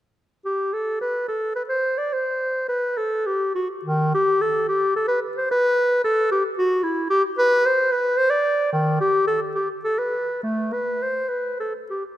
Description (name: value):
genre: classical, baroque-style fantasia for unaccompanied clarinet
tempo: 96-114 BPM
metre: 3/4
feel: rubato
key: unclear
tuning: A4 = 438 Hz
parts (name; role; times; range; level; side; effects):
- mellow clarinet; solo; 0.5-12.0 s; D#3 to D5; -20 LUFS; equal; none
room: moderate concert hall reverb, RT60 2.2 s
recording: none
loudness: -20 LUFS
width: side -13 dB against mid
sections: 0.5-12.2 A section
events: none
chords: none